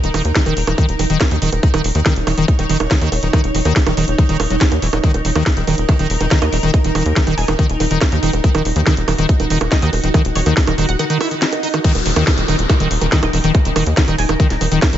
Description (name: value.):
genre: psychedelic trance.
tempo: 141 BPM.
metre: 4/4.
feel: straight.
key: Eb minor.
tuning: A4 = 440 Hz.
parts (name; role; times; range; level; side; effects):
evolving wavetable pad; sustained chords; 0.0-15.0 s; Eb4 to Db5; -24 LUFS; right 1 dB; ensemble chorus, built-in reverb, phaser, sidechain pumping.
liquid acid bass; riff; 0.0-15.0 s; Eb3 to Fb4; -20 LUFS; left 1 dB; chorus, auto-pan, sidechain pumping, digital delay.
tight sequencer bass; bass; 0.0-15.0 s; Eb1 to Eb2; -19 LUFS; equal; none.
garage drum kit; drums; 0.0-15.0 s; bongos, crash cymbal, hi-hat, snare drum; -21 LUFS; right 2 dB; studio reverb.
electronic kick drum; drums; 0.4-14.9 s; none; -14 LUFS; equal; studio reverb.
resonant blip pluck; second line; 6.3-14.8 s; Db5 to Ab5; -29 LUFS; right 3 dB; phaser, sidechain pumping, high-pass filter, digital delay.
swell and downlifter; sound effects; 11.2-15.0 s; none; -25 LUFS; equal; none.
room: digital ambience.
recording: nothing above 7.8 kHz.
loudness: -13 LUFS.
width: side -11 dB against mid.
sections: 0.0-11.8 A section; 11.8-15.0 B section.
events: break 11.0-11.8; swell 11.2-11.8; drop 11.8-15.0.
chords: 0.0 Eb5.